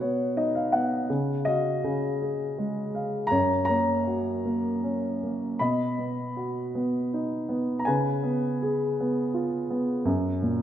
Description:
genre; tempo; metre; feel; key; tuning
classical, lyrical solo piano; 80 BPM; 3/4; uneven beats, rubato; unclear; A4 = 441 Hz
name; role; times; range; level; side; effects
dark grand piano; solo; 0.0-10.6 s; F#2 to B5; -24 LUFS; equal; none
room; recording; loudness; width
moderate concert hall reverb, RT60 2.4 s; none; -24 LUFS; side -10 dB against mid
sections
0.0-10.6 A section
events
grand piano fill 0.0-1.1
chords
0.0 B; 1.1 C#; 3.3 F#; 5.6 B; 7.9 C#7; 10.1 F#

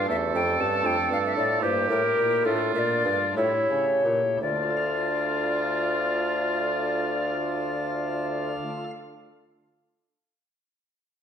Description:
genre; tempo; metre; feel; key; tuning
classical, baroque-style sonata movement with continuo; 55-80 BPM (dotted quarters); 6/8; straight; D minor; A4 = 440 Hz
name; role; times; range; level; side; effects
tenor recorder; melody; 0.0-8.6 s; A4 to A5; -26 LUFS; left 4 dB; none
clear oboe; second line; 0.0-8.6 s; E4 to A4; -30 LUFS; right 6 dB; none
chamber organ, sparkling flutes; accompaniment; 0.0-8.9 s; E2 to F5; -31 LUFS; equal; none
warm bassoon; bass; 0.0-8.5 s; D2 to C#3; -29 LUFS; right 2 dB; none
room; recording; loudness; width
wet recital hall reverb, RT60 1.4 s; none; -23 LUFS; side -8 dB against mid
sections
0.0-4.4 A section; 4.4-8.7 B section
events
slowing down 0.1-4.4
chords
0.1 A7/E; 0.9 Dm/F; 1.6 Edim/G; 2.5 Dm/A; 3.4 A7; 4.4 Dm

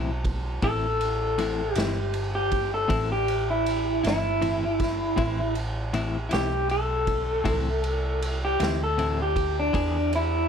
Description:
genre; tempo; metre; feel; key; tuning
slow blues; 53 BPM (dotted quarters); 12/8; straight; A minor; A4 = 440 Hz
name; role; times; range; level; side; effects
clean electric guitar; accompaniment; 0.0-10.0 s; A2 to G#4; -30 LUFS; left 5 dB; tremolo
hollow-body short-scale fingered electric bass; bass; 0.0-10.5 s; G1 to E2; -29 LUFS; right 1 dB; none
vintage drum kit; drums; 0.2-10.3 s; kick drum, ride cymbal, snare drum; -31 LUFS; right 1 dB; none
electric guitar through a small old amp; melody; 0.6-10.5 s; D4 to A4; -26 LUFS; equal; tremolo
room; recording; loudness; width
light reverb; none; -23 LUFS; side -7 dB against mid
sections
0.0-10.5 A section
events
clean electric guitar solo 0.0-10.5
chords
0.0 Am; 9.7 E7

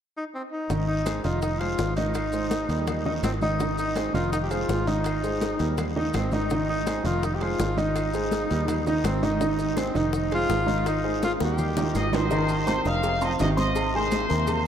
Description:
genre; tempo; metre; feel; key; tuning
latin, salsa; 165 BPM; 4/4; straight; unclear; A4 = 440 Hz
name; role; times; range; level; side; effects
breathy tenor saxophone; melody; 0.2-12.1 s; C4 to G4; -28 LUFS; left 1 dB; none
warm concert grand piano; accompaniment; 0.7-14.6 s; Eb3 to Eb6; -28 LUFS; right 2 dB; none
fingered electric bass; bass; 0.7-14.7 s; F1 to Eb2; -29 LUFS; equal; none
bongos and cowbell; percussion; 0.7-14.7 s; none; -37 LUFS; left 7 dB; none
congas; percussion; 0.7-14.7 s; none; -35 LUFS; left 1 dB; none
guiro; percussion; 0.7-14.7 s; none; -45 LUFS; left 4 dB; none
maracas; percussion; 0.7-14.7 s; none; -47 LUFS; right 4 dB; none
claves; percussion; 1.1-14.7 s; none; -46 LUFS; left 3 dB; none
timbales and agogo bells; percussion; 1.1-14.7 s; none; -36 LUFS; right 5 dB; none
bright trumpet section; melody; 12.0-14.6 s; C5 to Eb6; -28 LUFS; left 1 dB; none
warm trombone section; second line; 12.3-14.6 s; C3 to F3; -31 LUFS; left 2 dB; none
room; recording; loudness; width
wet cathedral reverb, RT60 6.4 s; in a vast, echoing space; -23 LUFS; side -9 dB against mid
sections
0.7-12.3 A section; 12.3-14.7 B section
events
drum fill 11.2-12.3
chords
0.0 N.C.; 0.7 Fm7; 2.2 Ab; 2.9 Eb; 3.6 Fm7; 5.1 Ab; 5.8 Eb; 6.5 Fm7; 8.0 Ab; 8.7 Eb; 9.4 Fm7; 10.9 Ab; 12.3 Fm7; 13.8 Fm7 (rootless)

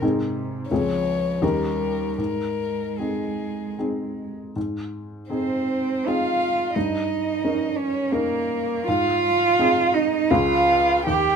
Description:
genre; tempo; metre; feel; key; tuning
classical, slow romantic movement for piano trio; 74-90 BPM; 3/4; rubato; Ab major; A4 = 441 Hz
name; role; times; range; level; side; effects
dark violin; melody; 0.0-11.4 s; Ab4 to G5; -28 LUFS; left 7 dB; none
dark cello; second line; 0.0-11.4 s; C3 to G4; -23 LUFS; right 5 dB; none
warm baby grand piano; accompaniment; 0.0-11.4 s; Db2 to Bb4; -26 LUFS; left 2 dB; none
room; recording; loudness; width
light reverb; minimal, uncompressed stereo recording; -20 LUFS; side -6 dB against mid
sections
0.0-4.6 A section; 4.6-11.4 A section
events
none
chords
0.0 Ab; 0.7 Dbmaj7; 1.4 Eb7; 2.2 Ab; 6.8 Eb7/G; 8.9 Ab; 10.3 Db

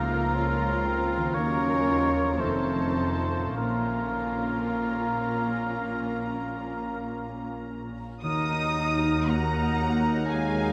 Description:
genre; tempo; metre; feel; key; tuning
classical, slow romantic movement for symphony orchestra; 49-62 BPM; 4/4; rubato; Bb minor; A4 = 441 Hz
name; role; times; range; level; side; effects
muted studio violin section; melody; 0.0-10.7 s; Ab5 to Eb6; -38 LUFS; equal; none
bright clarinet; second line; 0.0-10.7 s; Db4 to Gb4; -40 LUFS; equal; none
muted symphonic violin section; second line; 0.0-10.7 s; F4 to Bb5; -41 LUFS; equal; none
warm oboe; second line; 0.0-10.7 s; Bb4 to Db5; -35 LUFS; equal; none
muted symphonic viola section; accompaniment; 0.0-10.7 s; F3 to Bb4; -40 LUFS; equal; none
warm bassoon; accompaniment; 0.0-10.7 s; Gb3 to Db4; -38 LUFS; equal; none
mellow French horn section; sustained chords; 0.0-10.7 s; Ab3 to Eb4; -35 LUFS; equal; none
concert harp; arpeggios; 0.0-10.7 s; Bb2 to Bb5; -39 LUFS; equal; none
muted symphonic cello section; bass; 0.0-10.7 s; Db2 to Eb4; -36 LUFS; equal; none
muted symphonic double bass section; bass; 0.0-10.7 s; F1 to Eb2; -37 LUFS; equal; none
hollow concert flute; second line; 8.2-10.7 s; Ab5 to Eb6; -38 LUFS; equal; none
dark tuba; bass; 8.2-10.7 s; Eb2; -34 LUFS; equal; none
room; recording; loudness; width
wet huge ambient reverb, RT60 8.1 s; in a vast, echoing space; -27 LUFS; mono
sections
0.0-8.2 A section; 8.2-10.7 B section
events
none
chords
0.0 Bbm/Db; 1.3 Ebm; 2.4 F7; 3.6 Bbm; 8.2 Ebm

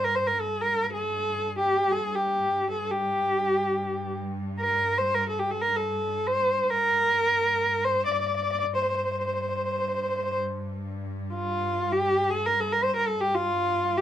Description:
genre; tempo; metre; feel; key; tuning
arabic; free time; none; none; G maqam bayati; A4 = 440 Hz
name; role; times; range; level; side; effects
dark cello; melody; 0.0-14.0 s; F4 to D5; -24 LUFS; equal; none
clear symphonic cello section; drone; 0.0-14.0 s; G2; -35 LUFS; equal; none
room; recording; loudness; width
moderate studio reverb, RT60 0.5 s; none; -24 LUFS; side -11 dB against mid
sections
0.0-14.0 A section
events
none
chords
none

